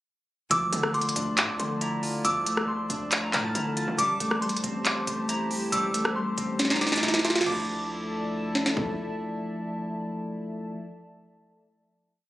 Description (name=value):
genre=hip hop, trap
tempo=138 BPM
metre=4/4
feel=half-time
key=D minor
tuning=A4 = 440 Hz
part: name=concert harp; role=melody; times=0.5-8.9 s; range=A5 to D6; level=-32 LUFS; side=equal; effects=digital delay
part: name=delicate synth tine bell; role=second line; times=0.5-8.7 s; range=C6 to F6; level=-32 LUFS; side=equal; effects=chorus, digital delay
part: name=clean electric guitar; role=accompaniment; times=0.5-10.8 s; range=F3 to G4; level=-32 LUFS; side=left 1 dB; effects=none
part: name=hollow soft pad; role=sustained chords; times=0.9-10.8 s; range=F3 to A5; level=-38 LUFS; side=equal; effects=chorus
part: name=hard-hitting 808-style bass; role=bass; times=0.5-9.2 s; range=A1 to D3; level=-37 LUFS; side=equal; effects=none
part: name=trap drum kit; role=drums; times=0.5-8.9 s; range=crash cymbal, handclaps, hi-hat, kick drum, rim click, snare drum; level=-26 LUFS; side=equal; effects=none
room=light reverb, digital ambience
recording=recorded on a phone in the room, club reverb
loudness=-25 LUFS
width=side -15 dB against mid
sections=0.5-7.5 hook; 7.5-10.9 final chord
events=drum fill 6.6-7.5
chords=0.5 Dmadd9; 4.0 Am7; 7.5 Dmadd9